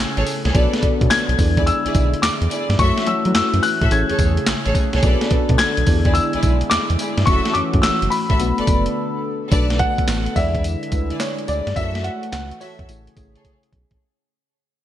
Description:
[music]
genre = R&B, new jack swing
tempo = 107 BPM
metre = 4/4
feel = swing 66% on 16ths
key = B dorian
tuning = A4 = 439 Hz
[part]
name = mellow FM electric piano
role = accompaniment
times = 0.0-14.0 s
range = G#3 to D5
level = -26 LUFS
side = left 3 dB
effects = chorus
[part]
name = warm analog pad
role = sustained chords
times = 0.0-14.0 s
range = C#3 to A4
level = -28 LUFS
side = right 1 dB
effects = chorus
[part]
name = round analog bass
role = bass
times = 0.0-14.0 s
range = F#1 to F#3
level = -21 LUFS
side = equal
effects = none
[part]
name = warm studio string section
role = stabs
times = 0.2-13.5 s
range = E4 to E5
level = -27 LUFS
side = right 1 dB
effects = none
[part]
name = boom bap sampler-style drum kit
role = drums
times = 0.2-14.0 s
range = handclaps, hi-hat, kick drum, snare drum, tambourine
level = -20 LUFS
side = equal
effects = gated reverb
[part]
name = dark baby grand piano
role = melody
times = 1.1-13.7 s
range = C#5 to G#6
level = -23 LUFS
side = left 3 dB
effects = none
[sound]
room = light reverb, digital ambience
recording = bright 1980s-style digital production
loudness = -16 LUFS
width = side -11 dB against mid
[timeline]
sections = 0.0-9.5 A section; 9.5-14.0 B section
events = break 0.0-0.5, 9.0-9.5; fade-out 9.5-14.0; drum fill 13.4-14.0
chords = 0.0 Amaj7; 0.5 Bm7; 1.4 E7; 2.8 F#m7; 3.9 Amaj7; 5.0 Bm7; 5.9 E7; 7.3 F#m7; 8.4 Bm7; 10.4 E7; 11.8 F#m7; 12.9 Amaj7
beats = | 0.55 1.11 1.67 2.23 | 2.79 3.35 3.91 4.47 | 5.03 5.59 6.15 6.71 | 7.28 7.84 8.40 8.96 | 9.52 10.08 10.64 11.20 | 11.76 12.32 12.88 13.44

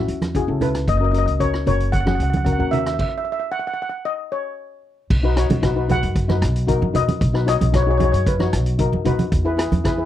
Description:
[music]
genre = calypso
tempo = 114 BPM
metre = 4/4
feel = straight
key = B major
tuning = A4 = 440 Hz
[part]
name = steel pan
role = accompaniment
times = 0.0-10.1 s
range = C#4 to C#5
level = -24 LUFS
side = left 5 dB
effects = none
[part]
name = upright bass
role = bass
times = 0.0-10.1 s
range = F#1 to F#2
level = -21 LUFS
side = equal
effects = none
[part]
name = street-band drum kit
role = drums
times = 0.1-10.0 s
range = crash cymbal, hi-hat, kick drum, rim click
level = -24 LUFS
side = equal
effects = none
[part]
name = congas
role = percussion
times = 0.2-9.8 s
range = none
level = -23 LUFS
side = right 3 dB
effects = none
[part]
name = steel pan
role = melody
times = 0.4-9.0 s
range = G#4 to F#5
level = -24 LUFS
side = left 2 dB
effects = none
[sound]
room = little or no reverb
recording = dry, close 1970s-style studio recording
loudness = -17 LUFS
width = side -12 dB against mid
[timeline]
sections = 0.0-5.1 A section; 5.1-10.1 B section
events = stop 3.0-5.1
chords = 0.0 A; 0.9 F#; 5.1 Badd9; 9.3 E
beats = 0.35 | 0.88 1.41 1.94 2.46 | 2.99 3.52 4.05 4.58 | 5.10 5.63 6.16 6.68 | 7.21 7.74 8.27 8.79 | 9.32 9.85

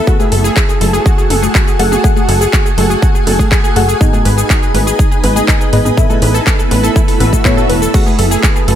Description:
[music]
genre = progressive house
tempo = 122 BPM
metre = 4/4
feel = straight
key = F# dorian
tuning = A4 = 440 Hz
[part]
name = shimmering ambient pad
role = sustained chords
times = 0.0-8.8 s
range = A3 to G#4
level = -18 LUFS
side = right 1 dB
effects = chorus, built-in reverb, sidechain pumping
[part]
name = wide unison pluck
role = arpeggios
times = 0.0-8.8 s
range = D#4 to B4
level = -18 LUFS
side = equal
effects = cassette tape, sidechain pumping, digital delay
[part]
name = deep mellow chord stab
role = stabs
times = 0.0-8.8 s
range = G#2 to F#5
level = -18 LUFS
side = left 3 dB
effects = chorus, sidechain pumping, digital delay
[part]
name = big-room dance drum kit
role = drums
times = 0.1-8.8 s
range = crash cymbal, handclaps, hi-hat, shaker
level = -19 LUFS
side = left 1 dB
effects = overdrive
[part]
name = electronic kick drum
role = drums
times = 0.1-8.5 s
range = none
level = -12 LUFS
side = equal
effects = overdrive
[part]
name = electronic congas and toms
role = percussion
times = 0.2-8.8 s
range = none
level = -23 LUFS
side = left 4 dB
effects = overdrive, sidechain pumping on perc, sidechain pumping on toms
[part]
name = plucky analog bass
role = bass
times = 0.3-8.8 s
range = E1 to A1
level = -14 LUFS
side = equal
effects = sidechain pumping
[part]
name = swell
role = sound effects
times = 7.1-7.9 s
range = none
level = -24 LUFS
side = right 2 dB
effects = none
[sound]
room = little or no reverb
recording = none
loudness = -9 LUFS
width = side -10 dB against mid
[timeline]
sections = 0.0-8.8 A section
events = swell 7.1-7.9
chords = 0.1 F#madd9; 4.0 G#m; 6.0 Asus2; 7.9 F#madd9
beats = | 0.07 0.56 1.06 1.55 | 2.04 2.53 3.02 3.52 | 4.01 4.50 4.99 5.48 | 5.97 6.47 6.96 7.45 | 7.94 8.43

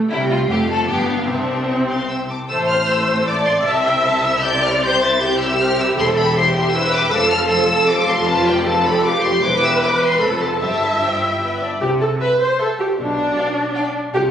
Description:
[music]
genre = quick classical-period movement for string orchestra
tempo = 155 BPM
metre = 3/4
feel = rubato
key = A minor, C major from 7.1 s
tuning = A4 = 440 Hz
[part]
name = rich studio viola section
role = accompaniment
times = 0.0-14.2 s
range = G3 to E5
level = -18 LUFS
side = equal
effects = none
[part]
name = clear studio violin section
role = melody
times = 0.1-13.8 s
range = E5 to A6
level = -21 LUFS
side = left 2 dB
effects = none
[part]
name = rich studio violin section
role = second line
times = 0.1-13.8 s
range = A3 to F5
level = -24 LUFS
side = left 2 dB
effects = none
[part]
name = rich studio cello section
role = bass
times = 0.1-14.3 s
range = E2 to C3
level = -25 LUFS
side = equal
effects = none
[part]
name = rich studio double bass section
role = bass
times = 0.1-14.3 s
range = E1 to C2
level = -27 LUFS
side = right 1 dB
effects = none
[sound]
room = wet recital hall reverb, RT60 1.8 s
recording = recorded on a phone in the room, studio reverb, compression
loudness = -15 LUFS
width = side -9 dB against mid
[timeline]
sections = 0.0-2.5 A section; 2.5-11.8 B section; 11.8-14.3 A section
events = none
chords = 0.1 C5; 0.5 F; 0.9 G7; 1.3 C; 2.5 Am; 3.7 Am/C; 4.8 C; 6.0 C/E; 7.1 F; 8.3 G7/F; 9.4 C/E; 10.2 F; 10.6 C/G; 11.8 C; 13.0 G/B (rootless)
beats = | 0.11 0.49 0.89 | 1.29 1.69 2.10 | 2.50 2.90 3.29 | 3.67 4.06 4.45 | 4.83 5.22 5.60 | 5.99 6.37 6.75 | 7.13 7.51 7.90 | 8.28 8.67 9.05 | 9.44 9.82 10.21 | 10.62 11.02 11.42 | 11.82 12.21 12.59 | 12.98 13.36 13.75 | 14.13

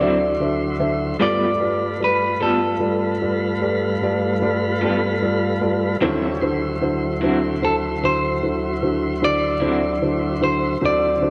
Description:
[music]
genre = blues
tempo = 50 BPM (dotted quarters)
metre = 12/8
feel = straight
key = D mixolydian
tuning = A4 = 442 Hz
[part]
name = clean electric guitar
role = melody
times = 0.0-11.3 s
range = A4 to D5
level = -24 LUFS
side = equal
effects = none
[part]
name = dark concert grand piano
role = accompaniment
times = 0.0-11.3 s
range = D3 to E5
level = -24 LUFS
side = equal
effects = slapback echo
[part]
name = electric guitar through a small old amp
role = accompaniment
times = 0.0-9.9 s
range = D3 to A4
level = -28 LUFS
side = equal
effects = tremolo
[part]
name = tonewheel organ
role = sustained chords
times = 0.0-11.3 s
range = D2 to C5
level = -26 LUFS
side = equal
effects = slow rotary speaker
[sound]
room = wet lush hall reverb, RT60 2.6 s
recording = big arena sound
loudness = -20 LUFS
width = mono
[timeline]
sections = 0.0-11.3 A section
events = none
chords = 0.0 D9; 1.2 G9; 6.0 D9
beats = 0.01 | 1.21 2.41 3.61 4.81 | 6.01 7.21 8.42 9.62 | 10.82

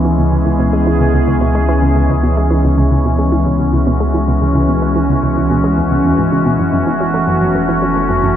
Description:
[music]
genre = ambient, sequencer-driven space music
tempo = 110 BPM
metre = 4/4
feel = straight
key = C# minor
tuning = A4 = 441 Hz
[part]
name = evolving wavetable pad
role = sustained chords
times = 0.0-8.4 s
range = E3 to A4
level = -14 LUFS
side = left 1 dB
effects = chorus, built-in reverb
[part]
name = analog pluck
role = riff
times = 0.0-8.3 s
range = C#2 to A3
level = -18 LUFS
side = equal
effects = chorus, analog delay
[part]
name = warm sub bass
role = bass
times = 0.0-8.4 s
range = F#1 to C#2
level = -17 LUFS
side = equal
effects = none
[sound]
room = moderate lush hall reverb, RT60 2.7 s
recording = dreamy mix soaked in reverb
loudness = -11 LUFS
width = side -10 dB against mid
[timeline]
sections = 0.0-8.4 A section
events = none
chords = 0.0 C#m7; 6.6 F#m7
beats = | 0.05 0.59 1.14 1.69 | 2.23 2.78 3.32 3.87 | 4.41 4.96 5.50 6.05 | 6.59 7.14 7.69 8.23

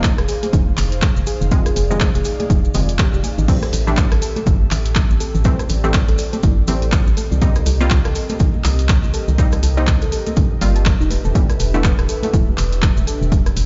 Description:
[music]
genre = deep house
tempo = 122 BPM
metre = 4/4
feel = swing 58% on 16ths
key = unclear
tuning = A4 = 439 Hz
[part]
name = airy breathy pad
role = sustained chords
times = 0.0-13.7 s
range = C4 to F5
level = -33 LUFS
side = equal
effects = chorus, sidechain pumping
[part]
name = soft round pluck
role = arpeggios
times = 0.0-13.1 s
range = Eb4 to A5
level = -31 LUFS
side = equal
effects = chorus, cassette tape, sidechain pumping, tape echo
[part]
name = filtered dub chord stab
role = stabs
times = 0.0-12.0 s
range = B2 to F4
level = -27 LUFS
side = equal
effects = chorus, sidechain pumping, delay
[part]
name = organ-like FM bass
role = bass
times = 0.0-13.7 s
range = D1 to C2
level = -21 LUFS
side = equal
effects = sidechain pumping
[part]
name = electronic kick drum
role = drums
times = 0.0-13.4 s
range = none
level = -19 LUFS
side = equal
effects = none
[part]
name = punchy analog drum machine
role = drums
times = 0.0-13.7 s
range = crash cymbal, handclaps, hi-hat, rim click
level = -28 LUFS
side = equal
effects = none
[part]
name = maracas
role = percussion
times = 0.1-13.7 s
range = none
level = -37 LUFS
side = equal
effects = none
[part]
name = congas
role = percussion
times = 0.4-13.3 s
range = none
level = -30 LUFS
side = equal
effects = none
[sound]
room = little or no reverb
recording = played on a big sound system in a bare room, large studio reverb, nothing above 7.6 kHz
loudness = -17 LUFS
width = mono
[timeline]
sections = 0.0-13.7 A section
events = none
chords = 0.0 Fm7; 3.5 Am7; 7.2 Cm7; 11.1 Em7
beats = 0.04 0.53 1.02 | 1.51 2.01 2.50 2.99 | 3.48 3.97 4.47 4.96 | 5.45 5.94 6.43 6.92 | 7.42 7.91 8.40 8.89 | 9.38 9.88 10.37 10.86 | 11.35 11.84 12.34 12.83 | 13.32

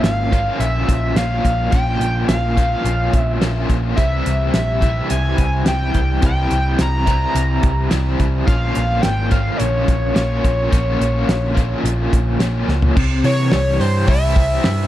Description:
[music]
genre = psychedelic rock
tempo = 107 BPM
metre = 4/4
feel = straight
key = C phrygian dominant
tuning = A4 = 439 Hz
[part]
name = overdriven synth lead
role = melody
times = 0.0-14.9 s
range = C5 to Bb5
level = -22 LUFS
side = equal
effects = tape echo
[part]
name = overdriven electric guitar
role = riff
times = 0.0-14.9 s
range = Bb2 to F4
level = -21 LUFS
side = left 1 dB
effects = tremolo
[part]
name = hollow-body short-scale picked electric bass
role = bass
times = 0.0-14.9 s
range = Ab1 to C3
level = -19 LUFS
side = equal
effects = none
[part]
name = damped 70s drum kit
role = drums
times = 0.0-14.8 s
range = crash cymbal, hi-hat, kick drum, snare drum, toms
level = -18 LUFS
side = equal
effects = none
[sound]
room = small room reverb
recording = none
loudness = -15 LUFS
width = side -13 dB against mid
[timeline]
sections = 0.0-13.0 A section; 13.0-14.9 B section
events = drum fill 12.7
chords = 0.0 Bbm; 4.0 C; 8.5 Bbm; 13.0 C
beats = 0.04 0.60 1.17 | 1.73 2.29 2.85 3.42 | 3.98 4.54 5.11 5.67 | 6.23 6.79 7.36 7.92 | 8.48 9.04 9.60 10.16 | 10.72 11.28 11.84 12.40 | 12.96 13.52 14.08 14.64

